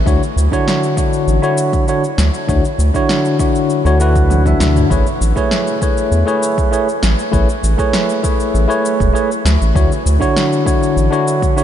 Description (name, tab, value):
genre	sunset chillout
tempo	99 BPM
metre	4/4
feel	straight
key	unclear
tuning	A4 = 440 Hz
part	round analog bass	bass	0.0-11.1 s	E1 to E2	-14 LUFS	equal	none
part	tine electric piano	accompaniment	0.1-11.6 s	D3 to E5	-15 LUFS	moving between left 4 dB and right 3 dB	auto-pan, tape echo
part	deep house drum kit	drums	0.1-11.6 s	cabasa, snare drum, toms	-23 LUFS	equal	overdrive
part	electronic kick drum	drums	0.1-11.5 s	none	-18 LUFS	equal	overdrive
room	moderate cathedral reverb, RT60 7.2 s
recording	dreamy mix soaked in reverb, nothing above 10.7 kHz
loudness	-12 LUFS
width	side -10 dB against mid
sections	0.0-11.6 A section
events	drum fill 4.3-4.9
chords	0.0 Dmaj7; 4.9 Amaj7; 9.5 Dmaj7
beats	| 0.06 0.67 1.27 1.88 | 2.49 3.09 3.70 4.30 | 4.91 5.52 6.12 6.73 | 7.33 7.94 8.55 9.15 | 9.76 10.36 10.97 11.58